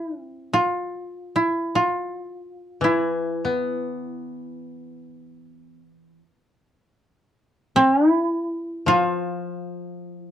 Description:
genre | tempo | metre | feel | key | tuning
japanese traditional, Japanese chamber music | free time | none | none | unclear | A4 = 445 Hz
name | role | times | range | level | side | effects
koto | melody | 0.0-10.3 s | E4 to F4 | -21 LUFS | equal | none
koto | accompaniment | 2.8-10.3 s | E3 to B3 | -27 LUFS | left 3 dB | none
room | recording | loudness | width
light reverb | dark, warm production | -20 LUFS | side -10 dB against mid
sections
0.0-10.3 A section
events
none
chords
none

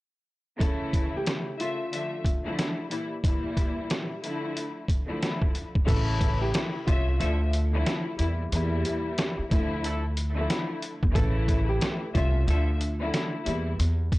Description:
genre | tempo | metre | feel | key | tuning
hip hop, boom-bap hip-hop | 91 BPM | 4/4 | swing 63% on 16ths | D harmonic minor | A4 = 440 Hz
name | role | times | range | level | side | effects
nylon-string guitar | melody | 0.6-13.1 s | F4 to A4 | -35 LUFS | equal | high-pass filter, low-pass filter
warm studio string section | accompaniment | 0.6-13.7 s | Bb2 to E5 | -31 LUFS | left 1 dB | high-pass filter, low-pass filter
trip hop sampler-style drum kit | drums | 0.6-14.2 s | crash cymbal, hi-hat, kick drum, snare drum | -27 LUFS | equal | none
upright bass | bass | 5.9-14.1 s | G1 to E2 | -26 LUFS | equal | transformer saturation
clear horn section | stabs | 7.2-12.7 s | F3 to E5 | -41 LUFS | right 1 dB | high-pass filter, low-pass filter, analog delay
room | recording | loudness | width
small room ambience | dry, gritty hardware recording, cassette tape | -25 LUFS | side -19 dB against mid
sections
0.6-5.9 A section; 5.9-14.2 B section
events
none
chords
0.6 A; 1.9 Dmadd9; 2.9 Edim; 4.2 Dmadd9; 5.9 A; 7.2 Dmadd9; 8.2 Edim; 9.5 Dmadd9; 11.2 A; 12.5 Dmadd9; 13.5 Edim

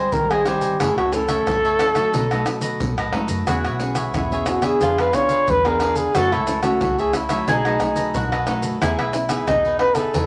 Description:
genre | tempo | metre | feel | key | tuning
samba and choro | 90 BPM | 4/4 | straight | E major | A4 = 438 Hz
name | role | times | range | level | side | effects
breathy trumpet | melody | 0.0-10.3 s | D#4 to D#5 | -22 LUFS | equal | none
cavaquinho | accompaniment | 0.0-10.3 s | D4 to G#5 | -32 LUFS | equal | none
nylon-string guitar | accompaniment | 0.0-10.3 s | F#2 to G#4 | -29 LUFS | equal | none
vintage muted fingered electric bass | bass | 0.1-10.3 s | F#1 to B2 | -32 LUFS | equal | none
maracas, surdo, pandeiro and tamborim | percussion | 0.1-10.3 s | none | -27 LUFS | equal | none
mandolin | second line | 3.5-10.3 s | D#4 to A4 | -29 LUFS | equal | none
room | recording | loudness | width
wet studio reverb, RT60 0.6 s | none | -20 LUFS | mono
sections
0.0-10.3 A section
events
none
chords
0.0 G#maj7; 0.8 F#m7; 2.1 B7; 3.5 E6; 4.8 Fdim7; 6.1 F#m7; 7.5 B7; 8.8 Emaj7

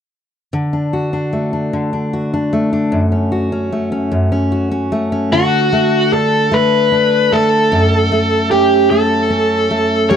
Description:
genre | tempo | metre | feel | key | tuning
six-eight pop ballad | 50 BPM (dotted quarters) | 6/8 | straight | D major | A4 = 440 Hz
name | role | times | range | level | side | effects
fingerpicked steel-string acoustic guitar | accompaniment | 0.5-10.2 s | F#2 to F#4 | -15 LUFS | left 1 dB | none
bluesy overdriven lead guitar | melody | 5.3-10.2 s | F#4 to C#5 | -12 LUFS | equal | distortion
room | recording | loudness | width
light reverb, small room ambience | dark, warm production | -12 LUFS | side -8 dB against mid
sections
0.5-5.3 A section; 5.3-10.2 B section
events
none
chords
0.5 D; 2.9 F#m; 5.3 D; 7.7 F#m

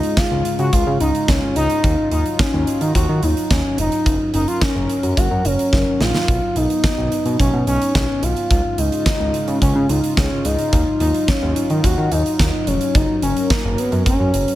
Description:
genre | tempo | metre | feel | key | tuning
synth-pop | 108 BPM | 4/4 | straight | Db mixolydian | A4 = 440 Hz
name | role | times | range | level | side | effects
expressive synth lead | melody | 0.0-14.6 s | Bb3 to Gb4 | -20 LUFS | equal | chorus, digital delay
warm analog pad | sustained chords | 0.0-14.6 s | Db3 to Bb4 | -26 LUFS | left 1 dB | chorus
huge arena drum kit | drums | 0.0-14.6 s | hi-hat, kick drum, snare drum | -20 LUFS | equal | none
fat analog bass | bass | 0.3-14.5 s | F1 to Eb3 | -20 LUFS | equal | none
room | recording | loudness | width
light reverb | none | -15 LUFS | side -14 dB against mid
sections
0.0-14.6 A section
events
drum fill 5.7-6.3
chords
0.0 Db; 1.8 Ebmadd9; 4.1 Gb; 6.3 Cb; 8.5 Db; 10.7 Ebmadd9; 12.9 Gb

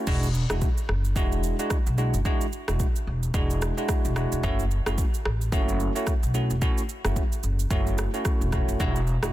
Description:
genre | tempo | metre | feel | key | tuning
afrobeats | 110 BPM | 4/4 | swing 58% on 16ths | unclear | A4 = 445 Hz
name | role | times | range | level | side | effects
barky tine electric piano | accompaniment | 0.0-9.3 s | G#3 to F#4 | -30 LUFS | right 1 dB | wide subtle chorus
upright bass | bass | 0.1-9.3 s | E1 to B1 | -26 LUFS | equal | none
afro-pop drum kit | drums | 0.1-9.3 s | crash cymbal, kick drum, rim click, shaker | -27 LUFS | equal | soft clipping on snare
room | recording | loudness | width
little or no reverb | dense, heavily limited modern master | -23 LUFS | side -14 dB against mid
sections
0.1-9.3 A section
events
none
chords
0.1 E9; 4.4 F#m7; 8.8 E9

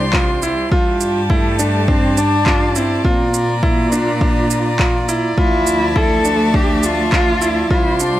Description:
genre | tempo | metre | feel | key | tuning
piano and strings electronica | 103 BPM | 4/4 | straight | D minor | A4 = 444 Hz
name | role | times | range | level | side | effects
rich string quartet | sustained chords | 0.0-8.2 s | F3 to C6 | -23 LUFS | left 1 dB | sidechain pumping
bright concert grand piano | riff | 0.0-8.2 s | D4 to F4 | -19 LUFS | right 1 dB | tape echo
dark chamber cello section | bass | 0.0-8.2 s | C2 to Bb2 | -20 LUFS | equal | sidechain pumping
electronic handclaps and shaker | drums | 0.1-8.1 s | none | -22 LUFS | right 2 dB | overdrive
electronic kick drum | drums | 0.1-7.8 s | none | -18 LUFS | equal | overdrive
dark cello | melody | 1.3-8.2 s | A3 to A4 | -19 LUFS | left 2 dB | none
room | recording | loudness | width
light reverb, small room ambience | none | -13 LUFS | side -14 dB against mid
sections
0.0-8.2 A section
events
none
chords
0.0 Csus2; 0.7 Gsus2; 3.0 Bb; 5.4 Dmadd9

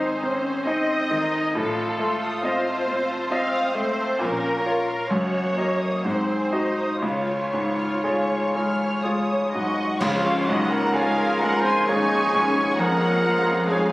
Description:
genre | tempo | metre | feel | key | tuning
classical, romantic movement for piano and orchestra | 59-69 BPM | 3/4 | rubato | Db major | A4 = 441 Hz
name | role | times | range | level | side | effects
bright concert grand piano | melody | 0.0-13.9 s | Db2 to Eb5 | -24 LUFS | equal | none
muted symphonic violin section | melody | 0.0-13.9 s | Eb5 to F6 | -32 LUFS | equal | none
muted studio violin section | second line | 0.0-13.9 s | A4 to Ab5 | -27 LUFS | equal | none
muted symphonic viola section | accompaniment | 0.0-13.9 s | Bb3 to Bb4 | -28 LUFS | equal | none
muted symphonic cello section | bass | 1.6-13.9 s | Gb2 to Db4 | -35 LUFS | equal | none
muted symphonic double bass section | bass | 1.6-13.9 s | Gb1 to F2 | -35 LUFS | right 1 dB | none
cymbal swell, clash cymbals and concert bass drum | percussion | 7.0-11.8 s | none | -38 LUFS | equal | none
mellow hollow silver concert flute | second line | 9.5-13.9 s | F5 to Db6 | -29 LUFS | equal | none
warm clarinet | second line | 9.5-13.9 s | F4 to Db5 | -27 LUFS | equal | none
mellow trombone section | sustained chords | 10.0-13.9 s | F2 to F3 | -36 LUFS | right 1 dB | none
warm French horn section | sustained chords | 10.0-13.9 s | Ab3 to Db4 | -34 LUFS | left 1 dB | none
timpani | percussion | 10.0-11.4 s | Db3 | -35 LUFS | equal | none
room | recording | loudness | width
moderate concert hall reverb, RT60 2.3 s | recorded on a phone in the room, studio ambience | -20 LUFS | side -19 dB against mid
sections
0.0-10.0 A section; 10.0-13.9 A section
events
band accent 10.0-10.9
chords
0.0 Ab; 1.6 F7/A; 4.2 Bbm; 5.1 Ebm/Gb; 6.0 Ab7; 7.0 Db; 12.8 Db/F

